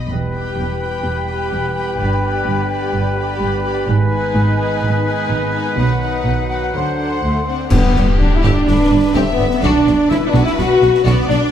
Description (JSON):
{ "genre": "cinematic, heroic adventure film score", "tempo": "126 BPM", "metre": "4/4", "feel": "straight", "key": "E minor, G major from 7.7 s", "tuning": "A4 = 440 Hz", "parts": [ { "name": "rich studio violin section", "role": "melody", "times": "0.0-11.4 s", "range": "F#4 to B5", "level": "-29 LUFS", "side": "left 5 dB", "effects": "none" }, { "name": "rich studio violin section", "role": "second line", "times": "0.0-11.5 s", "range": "G4 to G5", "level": "-28 LUFS", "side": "left 4 dB", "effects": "none" }, { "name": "clear oboe", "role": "second line", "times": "0.1-7.4 s", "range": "B4 to C5", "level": "-28 LUFS", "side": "left 1 dB", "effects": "none" }, { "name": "concert flute", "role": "second line", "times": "0.1-7.4 s", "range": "F#5 to G#5", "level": "-27 LUFS", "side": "left 3 dB", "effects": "none" }, { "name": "dark clarinet", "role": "second line", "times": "0.1-7.4 s", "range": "D4 to E4", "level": "-31 LUFS", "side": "left 2 dB", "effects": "none" }, { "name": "mellow French horn section", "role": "sustained chords", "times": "0.1-11.4 s", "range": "A3 to A4", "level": "-20 LUFS", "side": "left 1 dB", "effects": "none" }, { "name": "warm trombone section", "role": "sustained chords", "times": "0.1-7.5 s", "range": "D3 to G#3", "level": "-28 LUFS", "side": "right 4 dB", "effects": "none" }, { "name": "clear trumpet section", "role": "stabs", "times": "0.1-7.5 s", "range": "B4 to C5", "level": "-25 LUFS", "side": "left 1 dB", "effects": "none" }, { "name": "rich studio double bass section", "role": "bass", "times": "0.1-11.4 s", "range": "E1 to D2", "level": "-22 LUFS", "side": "right 2 dB", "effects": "none" }, { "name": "rich symphonic cello section", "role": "bass", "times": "0.1-11.4 s", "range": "E2 to D3", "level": "-22 LUFS", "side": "right 2 dB", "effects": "none" }, { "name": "timpani", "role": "percussion", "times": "0.1-0.8, 7.7-8.4 s", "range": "E2 to G2", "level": "-26 LUFS", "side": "equal", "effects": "none" }, { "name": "warm symphonic viola section", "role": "accompaniment", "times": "0.4-11.5 s", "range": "A3 to G4", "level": "-25 LUFS", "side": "right 1 dB", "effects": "none" }, { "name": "mellow tuba", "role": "bass", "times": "7.7-11.4 s", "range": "G1 to B1", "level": "-23 LUFS", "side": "right 3 dB", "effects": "none" }, { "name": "clash cymbals, concert bass drum and concert snare drum", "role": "drums", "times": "7.7-11.4 s", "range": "none", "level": "-25 LUFS", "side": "equal", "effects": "none" }, { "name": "clash cymbals and concert bass drum", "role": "percussion", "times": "7.7-8.6 s", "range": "none", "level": "-19 LUFS", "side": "left 1 dB", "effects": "none" } ], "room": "moderate scoring stage reverb, RT60 1.8 s", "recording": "none", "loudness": "-14 LUFS", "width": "side -9 dB against mid", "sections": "0.1-7.7 A section; 7.7-11.5 B section", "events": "band accent 7.7-8.2", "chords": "0.1 Em; 2.0 G; 3.9 G#m; 5.8 B; 6.7 D7; 7.7 G; 9.6 Bm" }